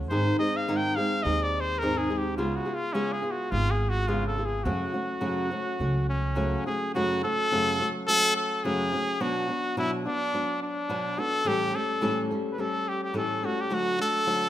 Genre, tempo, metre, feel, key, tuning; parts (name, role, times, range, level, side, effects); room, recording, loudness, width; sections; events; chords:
mexican folk, mariachi; 106 BPM; 4/4; straight; F# minor; A4 = 435 Hz
flamenco guitar; accompaniment; 0.0-14.5 s; F#2 to A4; -29 LUFS; equal
upright bass; bass; 0.0-6.5 s; G#1 to G#2; -29 LUFS; right 1 dB
clear trumpet; melody; 0.1-14.5 s; C#4 to G5; -27 LUFS; equal
light reverb; minimal, uncompressed stereo recording; -25 LUFS; side -12 dB against mid
0.0-6.9 A section; 6.9-14.5 A section
0.1 G#; 2.4 C#7; 4.7 F#m; 9.2 Bm; 11.5 A7; 13.7 D